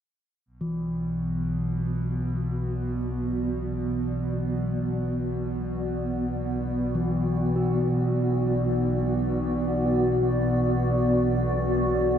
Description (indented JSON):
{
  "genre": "dark ambient drone",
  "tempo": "free time",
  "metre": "none",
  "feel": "none",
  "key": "B minor",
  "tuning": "A4 = 440 Hz",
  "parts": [
    { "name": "granular cloud pad", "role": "sustained chords", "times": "1.3-12.2 s", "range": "B3 to D5", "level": "-28 LUFS", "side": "equal", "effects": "built-in reverb" },
    { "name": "overtone-sweeping drone", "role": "drone", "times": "0.7-12.2 s", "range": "B1 to B2", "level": "-27 LUFS", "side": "equal", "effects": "chorus, built-in reverb" },
    { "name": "quartz singing bowl", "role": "arpeggios", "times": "0.6-12.2 s", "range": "E3 to F#4", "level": "-30 LUFS", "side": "left 1 dB", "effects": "tape echo" }
  ],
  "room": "moderate huge ambient reverb, RT60 7.9 s",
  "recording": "none",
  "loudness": "-24 LUFS",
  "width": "side -9 dB against mid",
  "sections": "0.5-12.2 A section",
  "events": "none",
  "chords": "0.5 Bm"
}